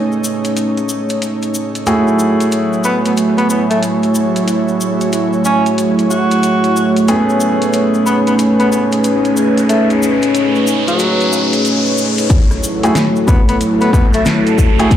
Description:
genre	glitch hop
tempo	92 BPM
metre	4/4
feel	swing 64% on 16ths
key	F# dorian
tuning	A4 = 440 Hz
part	warm analog pad	sustained chords	0.0-15.0 s	A3 to E5	-16 LUFS	equal	chorus, sidechain pumping
part	clear concert grand piano	stabs	0.0-14.9 s	A3 to G#4	-18 LUFS	equal	sidechain pumping, low-pass filter, digital delay
part	airy breathy pad	texture	0.0-15.0 s	F#3 to A5	-18 LUFS	right 1 dB	chorus, sidechain pumping
part	cabasa	percussion	0.1-15.0 s	none	-27 LUFS	left 3 dB	none
part	pop drum kit	drums	0.4-15.0 s	hi-hat, rim click, snare drum	-22 LUFS	equal	small room ambience
part	breathy tenor saxophone	melody	2.8-14.3 s	F#3 to F#4	-19 LUFS	equal	digital delay
part	riser	sound effects	8.4-15.0 s	none	-22 LUFS	equal	none
part	electronic kick drum	drums	12.3-15.0 s	none	-11 LUFS	left 1 dB	small room ambience
room	moderate plate reverb, RT60 3.2 s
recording	played on a big sound system in a bare room, large studio reverb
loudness	-11 LUFS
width	side -10 dB against mid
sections	0.0-12.3 A section; 12.3-15.0 B section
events	filter sweep on grand piano 0.0-12.3; riser 8.4-12.3, 12.3-15.0; build-up 12.3-15.0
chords	0.0 Amaj9; 1.9 F#m9; 7.1 Amaj9; 12.3 F#m7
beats	0.56 1.22 | 1.87 2.52 3.17 3.83 | 4.48 5.13 5.78 6.43 | 7.09 7.74 8.39 9.04 | 9.70 10.35 11.00 11.65 | 12.30 12.96 13.61 14.26 | 14.91

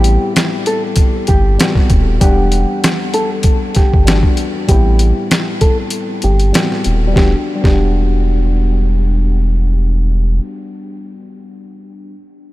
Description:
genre	hip hop, boom-bap hip-hop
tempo	97 BPM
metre	4/4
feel	swing 55% on 16ths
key	E minor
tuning	A4 = 441 Hz
part	nylon-string guitar	melody	0.0-9.0 s	G4 to A4	-20 LUFS	equal	high-pass filter, low-pass filter, ping-pong delay
part	mellow tine electric piano	accompaniment	0.0-12.2 s	E2 to F#5	-21 LUFS	left 3 dB	high-pass filter, low-pass filter
part	warm sub bass	bass	0.0-10.4 s	D#1 to A1	-13 LUFS	equal	none
part	boom bap sampler-style drum kit	drums	0.0-7.8 s	hi-hat, kick drum, rim click, snare drum	-14 LUFS	equal	none
room	light reverb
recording	none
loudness	-11 LUFS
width	side -17 dB against mid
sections	0.0-7.2 A section; 7.2-9.6 B section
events	filter sweep 0.0-7.2; kick muted 5.9-7.2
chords	0.0 Am7; 2.2 Em7; 4.7 Am7; 7.2 Em7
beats	0.36 0.97 1.59 | 2.21 2.83 3.45 4.07 | 4.69 5.30 5.92 6.54 | 7.16 7.78 8.40 9.02

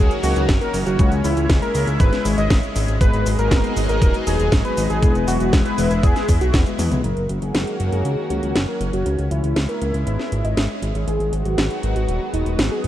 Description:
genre	italo disco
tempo	119 BPM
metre	4/4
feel	straight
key	unclear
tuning	A4 = 445 Hz
part	wide unison lead	melody	0.0-12.9 s	D#4 to D#5	-25 LUFS	equal	cassette tape, tape echo
part	lush unison pad	sustained chords	0.0-12.9 s	D#3 to G#4	-27 LUFS	equal	chorus, phaser
part	fat analog bass	bass	0.0-12.9 s	D#1 to E2	-21 LUFS	equal	none
part	mellow synth brass	stabs	0.1-7.0 s	G#3 to E5	-27 LUFS	left 6 dB	chorus
part	house drum kit	drums	0.1-12.9 s	cabasa, hi-hat, snare drum, toms	-25 LUFS	equal	none
part	electronic kick drum	drums	0.5-6.6 s	none	-17 LUFS	equal	none
room	light reverb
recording	dark, warm production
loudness	-17 LUFS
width	side -12 dB against mid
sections	0.0-7.0 A section; 7.0-12.9 B section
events	drum fill 6.8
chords	0.0 F#6; 1.0 C#m; 3.0 G#m7; 5.0 E; 7.0 F#6; 9.1 C#m; 11.1 G#m7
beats	0.49 | 0.99 1.50 2.00 2.50 | 3.01 3.51 4.02 4.52 | 5.03 5.53 6.03 6.54 | 7.04 7.55 8.05 8.55 | 9.06 9.56 10.07 10.57 | 11.08 11.58 12.09 12.59

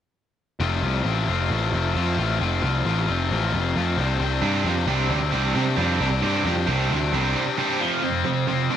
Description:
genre	rock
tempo	133 BPM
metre	4/4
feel	straight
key	unclear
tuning	A4 = 440 Hz
part	raw garage guitar	riff	0.6-8.8 s	F2 to G4	-24 LUFS	left 6 dB	overdrive
part	fuzz picked electric bass	bass	0.6-7.3 s	F1 to C3	-24 LUFS	right 1 dB	overdrive
part	high-gain distorted guitar	riff	4.4-8.8 s	F2 to D4	-25 LUFS	right 8 dB	distortion, lush chorus, slapback echo
room	moderate echo chamber reverb, RT60 1.7 s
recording	1960s-style stereo with parts hard left and right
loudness	-20 LUFS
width	side -9 dB against mid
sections	0.6-7.8 A section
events	none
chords	0.6 F; 4.0 Csus2; 7.8 F5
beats	| 0.60 1.05 1.50 1.95 | 2.40 2.85 3.30 3.75 | 4.21 4.66 5.11 5.56 | 6.01 6.46 6.91 7.36 | 7.80 8.25 8.70

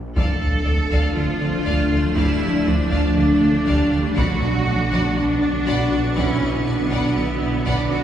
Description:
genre	cinematic, hybrid orchestral and electronic film score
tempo	120 BPM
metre	4/4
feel	straight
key	unclear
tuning	A4 = 440 Hz
part	wide detuned saw bass	bass	0.0-8.0 s	D1 to B1	-28 LUFS	equal	chorus
part	warm symphonic violin section	melody	0.2-8.0 s	F5 to B5	-37 LUFS	left 2 dB	none
part	rich symphonic violin section	second line	0.2-8.0 s	D5 to F#5	-30 LUFS	left 1 dB	none
part	granular cloud pad	sustained chords	1.1-8.0 s	D3 to D5	-26 LUFS	right 1 dB	built-in reverb
part	mellow French horn section	sustained chords	0.2-8.0 s	D3 to D4	-26 LUFS	left 2 dB	none
part	round analog bass	riff	0.2-8.0 s	D2 to B3	-24 LUFS	right 1 dB	none
part	clear symphonic cello section	bass	0.2-8.0 s	B3 to A4	-24 LUFS	right 1 dB	none
part	clear symphonic double bass section	bass	0.2-8.0 s	B1 to D2	-32 LUFS	right 2 dB	none
part	taiko ensemble	drums	0.2-8.0 s	none	-27 LUFS	equal	none
part	warm symphonic viola section	accompaniment	1.2-8.0 s	F3 to F#4	-28 LUFS	right 2 dB	none
room	wet cathedral reverb, RT60 4.3 s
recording	recorded in a church or concert hall, studio reverb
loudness	-17 LUFS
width	side -10 dB against mid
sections	0.2-8.0 A section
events	break 0.0; drum fill 0.0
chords	0.2 Dm; 4.2 Bm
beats	| 0.17 0.67 1.17 1.67 | 2.17 2.67 3.17 3.67 | 4.17 4.67 5.17 5.67 | 6.17 6.67 7.17 7.67

